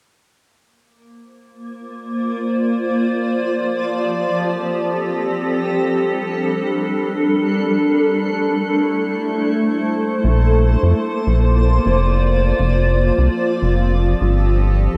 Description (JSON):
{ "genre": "IDM", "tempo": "102 BPM", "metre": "4/4", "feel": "straight", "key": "Bb lydian", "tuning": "A4 = 440 Hz", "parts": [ { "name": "granular cloud pad", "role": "sustained chords", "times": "1.6-15.0 s", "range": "F3 to D5", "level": "-20 LUFS", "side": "equal", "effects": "built-in reverb" }, { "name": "rubbery square bass", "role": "bass", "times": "10.2-15.0 s", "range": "F1 to F2", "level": "-17 LUFS", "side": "equal", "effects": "none" } ], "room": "wet lush hall reverb, RT60 3.0 s", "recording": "dreamy mix soaked in reverb", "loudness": "-18 LUFS", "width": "mono", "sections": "0.4-9.8 A section; 9.8-15.0 B section", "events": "none", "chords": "0.4 Bbadd9; 2.7 Fadd9; 5.1 Gm; 7.4 Am; 9.8 Bbmaj9; 12.2 Fadd9" }